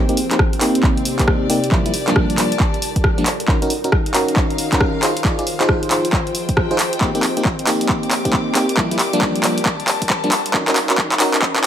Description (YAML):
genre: UK garage, two-step garage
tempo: 136 BPM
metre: 4/4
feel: swing 63% on 16ths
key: C minor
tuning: A4 = 440 Hz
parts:
  - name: ethereal airy pad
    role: sustained chords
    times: 0.1-11.7 s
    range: C3 to A5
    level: -29 LUFS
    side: equal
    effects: ensemble chorus, built-in reverb, sidechain pumping
  - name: FM electric piano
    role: stabs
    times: 0.0-11.7 s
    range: F3 to D5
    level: -20 LUFS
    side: equal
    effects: chorus, low-pass filter, ping-pong delay
  - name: dark chamber string section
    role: texture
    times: 0.0-11.7 s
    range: C4 to D6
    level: -26 LUFS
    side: left 2 dB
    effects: sidechain pumping
  - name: punchy analog drum machine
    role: drums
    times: 0.1-11.7 s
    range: handclaps, hi-hat, rim click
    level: -19 LUFS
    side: equal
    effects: none
  - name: electronic kick drum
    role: drums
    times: 0.4-11.5 s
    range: none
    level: -19 LUFS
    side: equal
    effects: none
room: light reverb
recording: high-pass filter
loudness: -15 LUFS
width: side -10 dB against mid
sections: 0.0-11.7 A section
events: build-up 0.0-11.7; drum fill 0.0-11.7; filter sweep on FM electric piano 0.0-11.7; filter sweep 0.0-11.7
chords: 0.0 Cm7; 1.7 Gm7; 3.5 Ebm7; 5.0 Fm7; 7.0 Cm7; 8.8 Gm7; 10.5 Ebm7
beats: 0.39 0.83 1.28 | 1.72 2.16 2.60 3.04 | 3.48 3.92 4.36 4.81 | 5.25 5.69 6.13 6.57 | 7.01 7.45 7.89 8.34 | 8.78 9.22 9.66 10.10 | 10.54 10.98 11.42